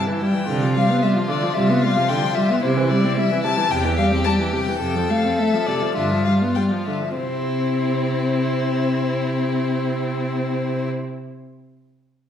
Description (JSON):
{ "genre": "quick classical-period movement for string quartet", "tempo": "96-113 BPM", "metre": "4/4", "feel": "straight", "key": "C major", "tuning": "A4 = 441 Hz", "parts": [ { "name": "rich violin", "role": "melody", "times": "0.0-10.9 s", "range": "C5 to A5", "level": "-25 LUFS", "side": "left 5 dB", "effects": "none" }, { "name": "clear violin", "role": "second line", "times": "0.0-10.9 s", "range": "E4 to A4", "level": "-27 LUFS", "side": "left 2 dB", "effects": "none" }, { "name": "clear viola", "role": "accompaniment", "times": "0.0-10.9 s", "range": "C3 to C4", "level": "-22 LUFS", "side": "equal", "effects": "none" }, { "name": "rich cello", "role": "bass", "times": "0.5-10.9 s", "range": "E2 to C3", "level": "-24 LUFS", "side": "right 2 dB", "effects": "none" } ], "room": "wet recital hall reverb, RT60 1.3 s", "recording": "heard from further back in the room", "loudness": "-18 LUFS", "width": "side -9 dB against mid", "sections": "0.0-7.2 A section; 7.2-12.1 B section", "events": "slowing down 1.6-7.2", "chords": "0.5 G7/C; 2.6 C; 3.7 C/E; 4.8 F; 6.0 G7; 7.2 C", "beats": "| 0.49 1.02 1.55 2.09 | 2.62 3.16 3.70 4.25 | 4.81 5.38 5.96 6.56 | 7.17 7.78 8.40 9.01 | 9.62 10.24 10.85" }